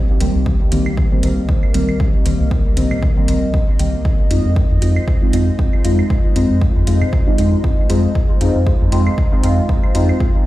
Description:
dub techno; 117 BPM; 4/4; swing 56% on 16ths; A4 = 437 Hz
dark analog pad; sustained chords; 0.0-10.5 s; Ab3 to Eb5; -26 LUFS; left 1 dB; chorus, phaser, sidechain pumping
deep mellow chord stab; stabs; 0.2-10.2 s; Eb3 to F4; -20 LUFS; equal; chorus, phaser, sidechain pumping, dub echo
warm sub bass; bass; 0.2-10.1 s; C2 to F2; -16 LUFS; equal; sidechain pumping
electronic hi-hat; drums; 0.2-10.1 s; -32 LUFS; equal
electronic kick drum; drums; 0.5-10.3 s; -16 LUFS; equal; overdrive
electronic claves and toms; percussion; 0.9-10.2 s; -31 LUFS; right 2 dB; sidechain pumping on perc, sidechain pumping on toms, dub echo
little or no reverb; played on a big sound system in a bare room, large studio reverb; -13 LUFS; side -16 dB against mid
0.0-10.5 A section
0.0 Cm7; 4.1 Fm7

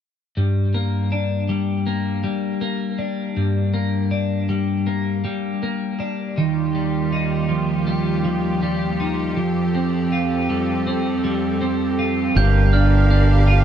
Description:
post-rock; 80 BPM; 4/4; straight; G minor; A4 = 440 Hz
twelve-string electric guitar; arpeggios; 0.4-13.6 s; G2 to F4; -20 LUFS; equal; wide subtle chorus, tape echo
clear studio string section; sustained chords; 6.4-13.6 s; Eb2 to F5; -26 LUFS; right 2 dB
glockenspiel with hard plastic mallets; arpeggios; 12.4-13.5 s; F6 to G6; -26 LUFS; right 7 dB; tape echo
growling fingered electric bass; bass; 12.4-13.6 s; G1; -14 LUFS; equal; overdrive
light reverb; dark, warm production; -18 LUFS; side -9 dB against mid
0.4-12.4 A section; 12.4-13.6 B section
build-up 12.4-13.6
0.4 Gm; 6.4 Ebadd9; 9.4 Fadd9; 12.4 Gm7

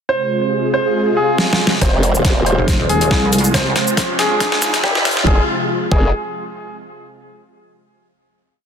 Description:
heavy wobble dubstep; 139 BPM; 4/4; swing 54% on 16ths, half-time; F minor; A4 = 445 Hz
warm baby grand piano; melody; 0.1-6.1 s; G4 to C5; -20 LUFS; equal; tape echo
supersaw pad; sustained chords; 0.1-5.5 s; C3 to Ab4; -21 LUFS; right 1 dB; phaser, vintage 12-bit sampler grit, sidechain pumping, low-pass filter
swell and riser; sound effects; 1.1-5.3 s; -25 LUFS; equal
dubstep drum kit; drums; 1.4-5.2 s; hi-hat, shaker, snare drum; -19 LUFS; equal; overdrive, high-pass filter on snare, low-pass filter on snare, high-pass filter on hats, low-pass filter on hats, high-pass filter on perc, low-pass filter on perc
formant-sweep wobble bass; bass; 1.8-6.1 s; Eb1 to F1; -16 LUFS; equal; chorus, overdrive
electronic kick drum; drums; 1.8-6.0 s; -17 LUFS; equal; overdrive
pulsing pluck wobble bass; bass; 2.6-5.3 s; Eb1 to C2; -17 LUFS; equal; chorus, overdrive
light reverb; dense, heavily limited modern master, high-pass filter; -13 LUFS; side -7 dB against mid
0.1-1.8 intro; 1.8-5.3 build; 5.3-7.0 final chord
filter sweep on supersaw synth 0.1-1.8; swell 1.1-1.8; drum fill 1.4-1.8, 1.8-5.3; build-up 1.8-5.3; filter sweep 1.8-5.3; riser 3.4-5.3
0.1 Fm; 5.3 N.C.

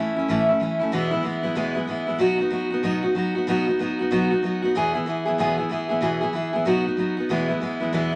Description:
rock; 189 BPM; 4/4; swing 62% on 8ths; E major; A4 = 440 Hz
picked steel-string acoustic guitar; solo; 0.0-8.2 s; E2 to G#4; -23 LUFS; equal
moderate studio reverb, RT60 0.5 s; vinyl crackle; -23 LUFS; mono
0.0-7.3 A section
0.0 A; 0.9 E; 2.2 B; 4.7 E; 6.7 B; 7.3 E

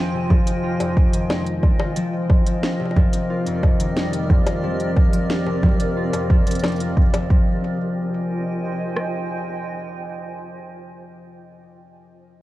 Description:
IDM; 90 BPM; 4/4; straight; F minor; A4 = 440 Hz
granular cloud pad; sustained chords; 0.0-10.7 s; C4 to Ab5; -28 LUFS; right 2 dB; built-in reverb, vintage 12-bit sampler grit
concert harp; arpeggios; 0.0-11.1 s; F2 to F4; -24 LUFS; left 2 dB; ping-pong delay
organic electronic drum kit; drums; 0.3-9.1 s; kick drum, rim click; -17 LUFS; equal; overdrive, small room ambience
organic electronic drum kit; drums; 0.3-7.3 s; bongos, congas, hi-hat, snare drum; -26 LUFS; equal; overdrive, small room ambience
light reverb; worn, warbling old tape, cassette tape, warbly pitch drift; -18 LUFS; side -16 dB against mid
0.0-7.3 A section; 7.3-10.0 B section
0.0 Fm9; 1.6 Cm9; 7.3 Fm9

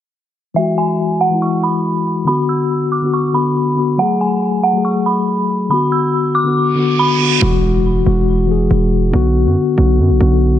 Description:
hip hop; 140 BPM; 4/4; half-time; B dorian; A4 = 441 Hz
mellow tine electric piano; accompaniment; 0.5-10.6 s; D3 to G#4; -15 LUFS; left 3 dB; medium stereo tremolo, low-pass filter
dark detuned synth bell; melody; 0.6-7.2 s; E5 to E6; -18 LUFS; right 2 dB; chorus, low-pass filter, ping-pong delay
reverse cymbal and impact; sound effects; 6.8-9.1 s; -21 LUFS; right 6 dB
hard-hitting 808-style bass; bass; 7.4-10.6 s; E1 to F#2; -14 LUFS; right 1 dB
light reverb; low-pass filter; -12 LUFS; side -11 dB against mid
0.6-7.4 A section; 7.4-10.6 B section
filter sweep 0.6-7.4; reverse cymbal 6.8-7.4; impact 7.4-9.1
0.6 Eadd9; 2.3 Bm; 4.0 F#madd9; 5.7 Bm; 7.4 Eadd9; 9.1 Bm

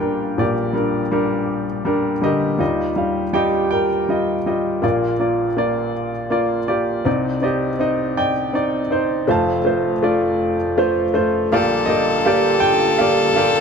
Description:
acoustic folk-pop ballad; 54 BPM (dotted quarters); 6/8; straight; Bb major; A4 = 439 Hz
clear upright piano; melody; 0.0-13.6 s; F1 to A5; -17 LUFS; equal
Celtic harp; arpeggios; 3.3-5.7, 12.3-13.6 s; G4; -23 LUFS; right 7 dB
rich violin; second line; 11.5-13.6 s; A4; -19 LUFS; left 5 dB
dark chamber string section; sustained chords; 11.5-13.6 s; D3 to F4; -25 LUFS; left 1 dB
light reverb; -16 LUFS; side -6 dB against mid
0.0-2.6 A section; 2.6-11.5 B section; 11.5-13.6 C section
upright piano fill 10.4-11.5
0.0 Gm/Bb; 2.6 Ebadd9; 7.1 Cmadd9; 9.3 F; 11.5 Bb6

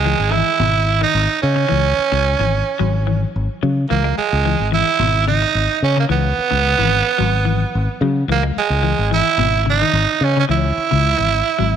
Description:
afrobeat; 109 BPM; 4/4; swing 53% on 16ths; C# dorian; A4 = 440 Hz
breathy tenor saxophone; melody; 0.0-11.8 s; G#3 to E4; -17 LUFS; right 8 dB
fingered electric bass; bass; 0.0-11.8 s; G#1 to C#3; -18 LUFS; left 1 dB
clean electric guitar; arpeggios; 0.1-11.8 s; B2 to G#3; -24 LUFS; left 12 dB
light reverb, small room ambience; 1960s-style stereo with parts hard left and right; -14 LUFS; side -8 dB against mid
0.0-11.8 A section
0.0 C#m

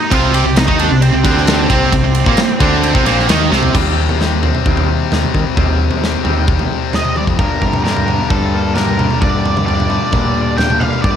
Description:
quiet-loud alternative rock; 132 BPM; 4/4; straight; A4 = 440 Hz
octave-fuzz lead guitar; melody; 0.0-3.2, 7.0-11.2 s; C4 to G5; -19 LUFS; right 3 dB; distortion, tape echo
phased string machine; sustained chords; 0.0-3.7 s; C3 to G4; -28 LUFS; equal
high-gain distorted guitar; riff; 0.1-3.7 s; Bb2 to Eb4; -16 LUFS; right 8 dB; distortion
tight distorted guitar; riff; 0.1-11.2 s; G2 to Eb4; -19 LUFS; left 10 dB; distortion
growling picked electric bass; bass; 0.1-11.1 s; Bb1 to Eb3; -18 LUFS; equal; overdrive
big rock drum kit; drums; 0.1-11.1 s; crash cymbal, kick drum, ride cymbal, snare drum, toms; -16 LUFS; equal
electric guitar through a small old amp; arpeggios; 3.7-11.2 s; G2 to D4; -24 LUFS; equal; wide subtle chorus
light reverb, small room ambience; -11 LUFS; side -8 dB against mid
0.0-3.7 A section; 3.7-7.4 B section; 7.4-11.2 C section
drum fill 3.5, 7.2
0.1 C5; 3.7 Cm/Eb; 7.4 Gm

